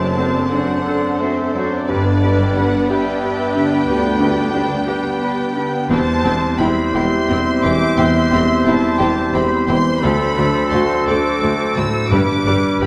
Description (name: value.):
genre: classical.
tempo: 58 BPM (dotted quarters).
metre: 12/8.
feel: rubato.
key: G major.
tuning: A4 = 435 Hz.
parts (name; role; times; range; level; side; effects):
clear grand piano; melody; 0.0-12.9 s; D2 to A4; -21 LUFS; equal; none.
warm symphonic violin section; melody; 0.0-12.9 s; C5 to E6; -28 LUFS; equal; none.
mellow silver concert flute; second line; 0.0-12.9 s; B4 to E5; -27 LUFS; equal; none.
warm symphonic violin section; second line; 0.0-12.9 s; G3 to G5; -32 LUFS; equal; none.
rich symphonic viola section; accompaniment; 0.0-12.9 s; G3 to G4; -30 LUFS; equal; none.
dark French horn section; sustained chords; 0.0-12.9 s; F#3 to E4; -29 LUFS; equal; none.
clear trumpet; stabs; 0.0-12.9 s; A4 to C5; -28 LUFS; equal; none.
mellow tuba; bass; 0.0-12.9 s; E1 to D2; -30 LUFS; equal; none.
rich symphonic cello section; bass; 0.0-12.9 s; D2 to G2; -28 LUFS; equal; none.
rich symphonic double bass section; bass; 0.0-12.9 s; E1 to D2; -28 LUFS; equal; none.
clear clarinet; second line; 0.2-12.9 s; F#4 to A4; -30 LUFS; equal; none.
clear oboe; second line; 0.2-12.9 s; A4 to C5; -30 LUFS; equal; none.
timpani; percussion; 12.1-12.9 s; G2; -27 LUFS; equal; none.
room: wet scoring stage reverb, RT60 1.6 s.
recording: none.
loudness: -17 LUFS.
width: mono.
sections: 0.0-12.9 A section.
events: none.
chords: 0.0 D7/F#; 1.9 G; 5.9 C/E; 10.0 D; 12.1 G.